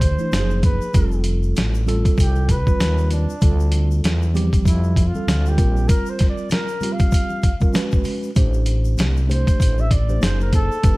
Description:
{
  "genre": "hip hop, jazz-hop",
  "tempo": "97 BPM",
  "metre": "4/4",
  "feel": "swing 58% on 16ths",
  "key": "unclear",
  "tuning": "A4 = 440 Hz",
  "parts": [
    { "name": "mellow flugelhorn", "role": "melody", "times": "0.0-11.0 s", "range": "D4 to F5", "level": "-28 LUFS", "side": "equal", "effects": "none" },
    { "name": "mellow tine electric piano", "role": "accompaniment", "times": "0.0-11.0 s", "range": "E3 to C5", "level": "-26 LUFS", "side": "right 1 dB", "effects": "medium stereo tremolo" },
    { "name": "growling FM bass", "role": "bass", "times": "0.0-11.0 s", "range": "F1 to F2", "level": "-19 LUFS", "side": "equal", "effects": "none" },
    { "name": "dusty soul sampler-style drum kit", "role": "drums", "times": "0.0-11.0 s", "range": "hi-hat, kick drum, snare drum", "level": "-18 LUFS", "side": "equal", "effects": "overdrive" },
    { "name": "tube shaker and congas", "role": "percussion", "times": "0.0-11.0 s", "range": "none", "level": "-37 LUFS", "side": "left 5 dB", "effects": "none" }
  ],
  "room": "digital ambience",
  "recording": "vinyl crackle",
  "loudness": "-16 LUFS",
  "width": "side -21 dB against mid",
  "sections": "0.0-11.0 A section",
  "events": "flugelhorn solo 0.0-11.0",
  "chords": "0.3 F#maj9#11; 0.9 Fadd9; 3.4 Dm9; 5.6 Bbsus2; 7.8 F#sus24/G#; 8.4 Am7; 10.2 F#add9",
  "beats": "0.33 | 0.95 1.56 2.18 2.80 | 3.42 4.04 4.66 5.28 | 5.89 6.51 7.13 7.75 | 8.37 8.99 9.61 10.22 | 10.84"
}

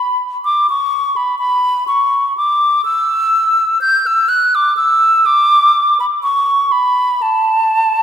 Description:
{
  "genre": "classical, baroque-style fantasia for unaccompanied flute",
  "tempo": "62 BPM",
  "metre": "4/4",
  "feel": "rubato",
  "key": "unclear",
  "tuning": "A4 = 443 Hz",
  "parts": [
    { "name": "hollow concert flute", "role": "solo", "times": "0.0-8.0 s", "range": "A5 to G6", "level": "-11 LUFS", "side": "equal", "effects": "none" }
  ],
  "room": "wet concert hall reverb, RT60 2.6 s",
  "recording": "minimal, uncompressed stereo recording",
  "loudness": "-11 LUFS",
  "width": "side -9 dB against mid",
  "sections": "0.0-8.0 A section",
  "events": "none",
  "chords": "none",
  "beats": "0.46 1.41 | 2.38 3.35 4.31 5.28 | 6.25 7.22"
}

